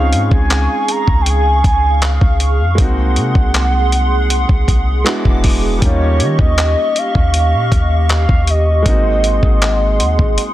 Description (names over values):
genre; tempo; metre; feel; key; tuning
contemporary R&B; 79 BPM; 4/4; straight; Db major; A4 = 440 Hz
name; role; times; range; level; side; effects
mellow horn-like synth lead; melody; 0.0-10.5 s; Db5 to Bb5; -19 LUFS; right 1 dB; chorus, phaser, digital delay
clear concert grand piano; accompaniment; 0.0-10.5 s; G3 to Gb4; -22 LUFS; equal; none
hollow soft pad; sustained chords; 0.0-10.5 s; G4 to D6; -22 LUFS; right 1 dB; ensemble chorus
clean 808-style bass; bass; 0.0-10.4 s; E1 to Eb3; -15 LUFS; equal; none
dusty soul sampler-style drum kit; drums; 0.1-10.5 s; handclaps, hi-hat, kick drum; -15 LUFS; equal; none
room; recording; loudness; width
digital ambience; dense, heavily limited modern master; -11 LUFS; side -14 dB against mid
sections
0.0-10.5 A section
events
break 10.4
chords
0.0 Dbmaj7; 2.8 Ab7/C; 5.1 E9; 5.8 Eb7; 8.9 Ab7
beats
0.51 1.26 2.02 | 2.78 3.54 4.30 5.06 | 5.82 6.58 7.34 8.10 | 8.86 9.62 10.38